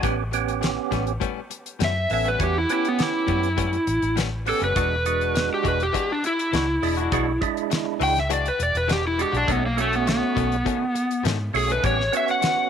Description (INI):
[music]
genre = straight-eighth soul blues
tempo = 102 BPM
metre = 4/4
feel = straight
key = unclear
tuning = A4 = 439 Hz
[part]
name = percussive tonewheel organ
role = accompaniment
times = 0.0-12.7 s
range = G#3 to A4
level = -27 LUFS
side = right 14 dB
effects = slow rotary speaker, overdrive
[part]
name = direct-recorded clean electric guitar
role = stabs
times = 0.0-12.6 s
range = A2 to F#4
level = -31 LUFS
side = left 13 dB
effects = tremolo
[part]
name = vintage muted fingered electric bass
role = bass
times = 0.0-12.1 s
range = E1 to G#2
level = -27 LUFS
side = equal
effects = none
[part]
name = damped 70s drum kit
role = drums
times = 0.0-12.6 s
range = hi-hat, kick drum, snare drum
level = -28 LUFS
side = left 1 dB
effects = none
[part]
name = overdriven slide guitar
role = melody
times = 1.8-12.7 s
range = A3 to G5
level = -23 LUFS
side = left 1 dB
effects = none
[sound]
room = moderate spring reverb, RT60 2.7 s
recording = 1960s-style stereo with parts hard left and right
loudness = -20 LUFS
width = side -8 dB against mid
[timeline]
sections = 0.0-12.7 A section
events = electric slide guitar solo 0.0-12.7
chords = 0.0 A9; 4.8 E9; 9.5 B9; 11.8 A9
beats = | 0.04 0.63 1.22 1.81 | 2.40 2.99 3.58 4.17 | 4.76 5.35 5.94 6.53 | 7.12 7.71 8.30 8.89 | 9.48 10.07 10.66 11.25 | 11.84 12.43